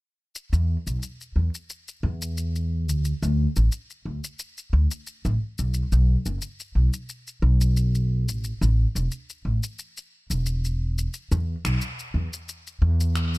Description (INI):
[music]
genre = sunset chillout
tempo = 89 BPM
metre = 4/4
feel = swing 54% on 16ths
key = unclear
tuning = A4 = 440 Hz
[part]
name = electronic shaker and finger snaps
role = drums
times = 0.4-13.4 s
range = none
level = -36 LUFS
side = left 2 dB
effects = none
[part]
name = upright bass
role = bass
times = 0.5-13.4 s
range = E1 to E2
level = -21 LUFS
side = equal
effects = none
[sound]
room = studio reverb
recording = dark, warm production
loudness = -23 LUFS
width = side -21 dB against mid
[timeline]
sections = 0.3-13.4 A section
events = none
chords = none